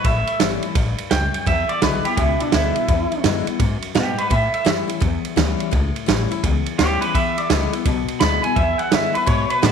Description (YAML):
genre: rockabilly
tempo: 169 BPM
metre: 4/4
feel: swing 64% on 8ths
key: unclear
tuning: A4 = 443 Hz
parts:
  - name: electric guitar through a small old amp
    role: melody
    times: 0.0-9.7 s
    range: D4 to B5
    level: -22 LUFS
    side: right 1 dB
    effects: spring reverb, tape echo
  - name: picked steel-string acoustic guitar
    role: accompaniment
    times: 0.0-9.7 s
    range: E2 to E4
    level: -25 LUFS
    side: left 14 dB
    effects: none
  - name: upright bass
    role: bass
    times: 0.0-9.7 s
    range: G1 to B2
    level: -23 LUFS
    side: left 1 dB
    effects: none
  - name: vintage drum kit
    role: drums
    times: 0.0-9.7 s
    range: kick drum, ride cymbal, snare drum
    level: -21 LUFS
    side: right 4 dB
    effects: none
room: light reverb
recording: 1960s-style stereo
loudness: -17 LUFS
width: side -7 dB against mid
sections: 0.0-9.7 A section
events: clean electric guitar solo 0.0-9.7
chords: 0.0 A7; 1.5 E7; 4.3 A7; 7.1 E7